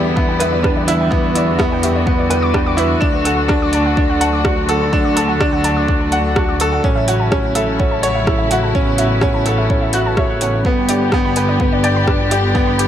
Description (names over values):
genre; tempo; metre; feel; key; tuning
piano and strings electronica; 126 BPM; 4/4; straight; D major; A4 = 440 Hz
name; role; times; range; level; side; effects
muted studio string section; sustained chords; 0.0-12.9 s; C#3 to G4; -22 LUFS; left 1 dB; sidechain pumping
warbly dusty pluck; arpeggios; 0.0-12.9 s; B4 to F#6; -23 LUFS; right 1 dB; chorus, sidechain pumping, ping-pong delay
bright concert grand piano; riff; 0.0-12.9 s; B3 to F#5; -17 LUFS; equal; ping-pong delay
rich chamber double bass section; bass; 0.0-12.9 s; G1 to E2; -20 LUFS; equal; sidechain pumping
electronic kick drum; drums; 0.2-12.6 s; none; -19 LUFS; equal; overdrive
deep house drum kit; drums; 0.4-12.9 s; hi-hat, rim click; -24 LUFS; right 1 dB; overdrive
room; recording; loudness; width
light reverb, small room ambience; none; -13 LUFS; side -10 dB against mid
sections
0.0-12.9 A section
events
none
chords
0.0 Em7; 3.0 D; 6.8 A6; 10.6 G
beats
0.17 0.65 | 1.12 1.60 2.07 2.55 | 3.03 3.50 3.98 4.46 | 4.93 5.41 5.88 6.36 | 6.84 7.31 7.79 8.27 | 8.74 9.22 9.69 10.17 | 10.65 11.12 11.60 12.07 | 12.55